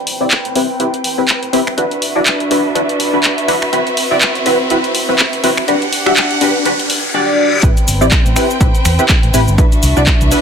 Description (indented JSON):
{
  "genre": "filtered disco house",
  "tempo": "123 BPM",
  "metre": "4/4",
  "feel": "swing 57% on 16ths",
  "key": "A dorian",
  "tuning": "A4 = 439 Hz",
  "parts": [
    { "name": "rich studio violin section", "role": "sustained chords", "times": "0.0-10.4 s", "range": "C4 to G5", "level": "-19 LUFS", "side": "right 1 dB", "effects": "sidechain pumping, low-pass filter" },
    { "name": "riser and reverse cymbal", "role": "sound effects", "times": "1.5-7.6 s", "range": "none", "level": "-22 LUFS", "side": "left 2 dB", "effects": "none" },
    { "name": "fingered electric bass", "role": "bass", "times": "0.1-10.3 s", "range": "G1 to C3", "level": "-17 LUFS", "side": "equal", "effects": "sidechain pumping, high-pass filter, low-pass filter" },
    { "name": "punchy analog drum machine", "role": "drums", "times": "0.1-10.4 s", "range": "finger snaps, handclaps, hi-hat, shaker", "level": "-16 LUFS", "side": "equal", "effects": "sidechain pumping on hats, sidechain pumping on perc" },
    { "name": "funky polysynth comp", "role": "accompaniment", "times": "0.2-10.4 s", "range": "C4 to E5", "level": "-16 LUFS", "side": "left 1 dB", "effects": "chorus, phaser, sidechain pumping, low-pass filter" },
    { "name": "electronic kick drum", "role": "drums", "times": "7.6-10.2 s", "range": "none", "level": "-12 LUFS", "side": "equal", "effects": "none" }
  ],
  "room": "moderate plate reverb, RT60 2.1 s",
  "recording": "none",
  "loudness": "-11 LUFS",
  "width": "side -7 dB against mid",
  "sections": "0.0-7.6 A section; 7.6-10.4 B section",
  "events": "build-up 0.0-7.6; filter sweep 0.0-7.6; riser 1.5-7.1; reverse cymbal 6.7-7.6; drop 7.6-10.4",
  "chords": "0.0 Am9; 1.8 Cmaj9#11; 3.7 D13; 5.7 Em9; 7.6 Am9; 9.6 Cmaj9#11"
}